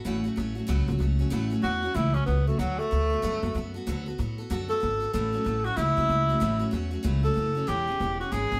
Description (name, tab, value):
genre	rockabilly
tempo	189 BPM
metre	4/4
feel	swing 63% on 8ths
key	A major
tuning	A4 = 440 Hz
part	picked steel-string acoustic guitar	accompaniment	0.0-8.6 s	A2 to A4	-34 LUFS	equal	none
part	upright bass	bass	0.1-8.6 s	E1 to A2	-30 LUFS	equal	none
part	warm tenor saxophone	melody	1.6-8.6 s	F#3 to A4	-30 LUFS	equal	none
room	moderate studio reverb, RT60 0.7 s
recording	band playing live in one room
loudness	-27 LUFS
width	mono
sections	0.0-8.6 A section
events	none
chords	0.1 A6; 2.6 D6; 5.1 A6; 7.7 E6